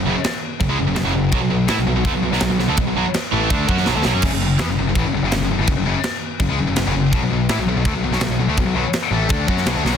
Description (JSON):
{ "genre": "heavy metal", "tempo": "166 BPM", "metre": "4/4", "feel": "straight", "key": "F# minor", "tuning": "A4 = 437 Hz", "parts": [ { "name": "distorted electric guitar", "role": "riff", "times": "0.0-4.2 s", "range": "F#2 to F#4", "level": "-23 LUFS", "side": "right 13 dB", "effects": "overdrive" }, { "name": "heavy high-gain guitar", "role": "riff", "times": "0.0-10.0 s", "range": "F#2 to F#4", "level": "-22 LUFS", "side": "left 9 dB", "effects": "distortion" }, { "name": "heavy high-gain guitar", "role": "riff", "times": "0.0-10.0 s", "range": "F#2 to F#4", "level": "-24 LUFS", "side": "equal", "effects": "distortion" }, { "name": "growling picked electric bass", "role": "bass", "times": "0.0-9.9 s", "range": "F#1 to A2", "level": "-22 LUFS", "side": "right 1 dB", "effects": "overdrive" }, { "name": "tight metal drum kit", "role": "drums", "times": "0.2-9.9 s", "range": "crash cymbal, kick drum, snare drum", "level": "-22 LUFS", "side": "equal", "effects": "none" } ], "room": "small room ambience", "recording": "dense, heavily limited modern master", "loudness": "-16 LUFS", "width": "side -8 dB against mid", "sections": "0.0-4.2 A section; 4.2-10.0 A section", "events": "drum fill 3.9-4.2", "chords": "0.0 F#5; 1.3 B5; 4.2 F#m; 7.1 B5" }